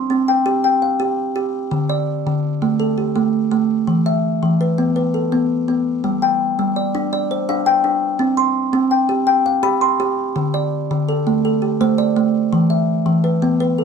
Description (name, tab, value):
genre	southern african traditional, mbira-style interlocking cycle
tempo	111 BPM (dotted quarters)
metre	12/8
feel	straight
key	G mixolydian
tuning	A4 = 440 Hz
part	kalimba	solo	0.0-13.8 s	D3 to C6	-16 LUFS	equal	none
room	moderate studio reverb, RT60 0.6 s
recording	dark, warm production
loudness	-16 LUFS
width	side -6 dB against mid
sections	0.0-6.0 A section; 6.0-13.8 B section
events	none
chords	0.0 C5; 1.7 D5; 3.9 E5; 6.0 G5; 8.2 C5; 10.4 D5; 12.5 E5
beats	0.10 0.64 1.18 | 1.72 2.26 2.80 3.34 | 3.88 4.42 4.96 5.50 | 6.04 6.58 7.12 7.66 | 8.20 8.74 9.28 9.82 | 10.36 10.90 11.44 11.98 | 12.52 13.06 13.60